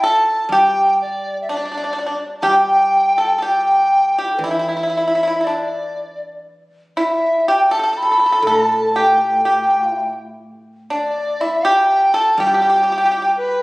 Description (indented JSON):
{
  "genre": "chinese traditional, Chinese chamber ensemble",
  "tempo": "60 BPM",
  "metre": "2/4",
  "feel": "rubato",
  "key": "G gong mode",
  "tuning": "A4 = 440 Hz",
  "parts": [
    { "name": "large dizi", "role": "melody", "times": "0.0-13.6 s", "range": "E4 to B5", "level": "-16 LUFS", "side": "equal", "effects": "none" },
    { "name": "pipa", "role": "second line", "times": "0.0-13.3 s", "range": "D4 to A4", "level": "-18 LUFS", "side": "equal", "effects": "none" },
    { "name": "guzheng", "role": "accompaniment", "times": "0.5-13.6 s", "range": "A2 to G3", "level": "-26 LUFS", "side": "equal", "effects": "none" }
  ],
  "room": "wet recital hall reverb, RT60 1.5 s",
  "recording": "recorded on a phone in the room, studio reverb",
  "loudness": "-14 LUFS",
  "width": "side -23 dB against mid",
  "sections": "0.0-13.6 A section",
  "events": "none",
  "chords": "none"
}